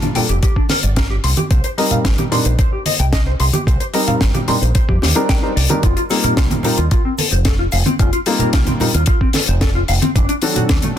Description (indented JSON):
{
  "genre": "nu-disco, nu disco",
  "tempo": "111 BPM",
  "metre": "4/4",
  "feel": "straight",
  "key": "unclear",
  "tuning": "A4 = 439 Hz",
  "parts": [
    { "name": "dark baby grand piano", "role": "accompaniment", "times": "0.0-11.0 s", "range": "Eb3 to A5", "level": "-20 LUFS", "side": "left 2 dB", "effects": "tape echo" },
    { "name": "mellow electric guitar", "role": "riff", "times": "0.0-10.9 s", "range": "A3 to C6", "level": "-22 LUFS", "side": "left 2 dB", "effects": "wide subtle chorus, low-pass filter, tape echo" },
    { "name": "tight funk drum kit", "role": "drums", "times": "0.0-10.9 s", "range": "hi-hat, snare drum", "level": "-21 LUFS", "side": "left 3 dB", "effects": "studio reverb" },
    { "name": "congas and cabasa", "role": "percussion", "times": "0.0-10.9 s", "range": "none", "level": "-22 LUFS", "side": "right 4 dB", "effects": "none" },
    { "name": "fingered electric bass with an envelope filter", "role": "bass", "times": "0.2-10.8 s", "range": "F1 to F2", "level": "-18 LUFS", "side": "equal", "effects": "none" },
    { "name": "electronic kick drum", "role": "drums", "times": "0.4-10.8 s", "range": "none", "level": "-16 LUFS", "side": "equal", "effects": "studio reverb" }
  ],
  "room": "studio ambience",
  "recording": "dense, heavily limited modern master",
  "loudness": "-13 LUFS",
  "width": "side -10 dB against mid",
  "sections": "0.0-11.0 A section",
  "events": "none",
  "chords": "0.0 Gm9; 1.2 Cm9; 5.8 F7sus4; 10.2 D7b9/F#",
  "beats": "0.43 0.97 | 1.51 2.05 2.59 3.13 | 3.67 4.21 4.75 5.29 | 5.83 6.37 6.91 7.46 | 8.00 8.54 9.08 9.62 | 10.16 10.70"
}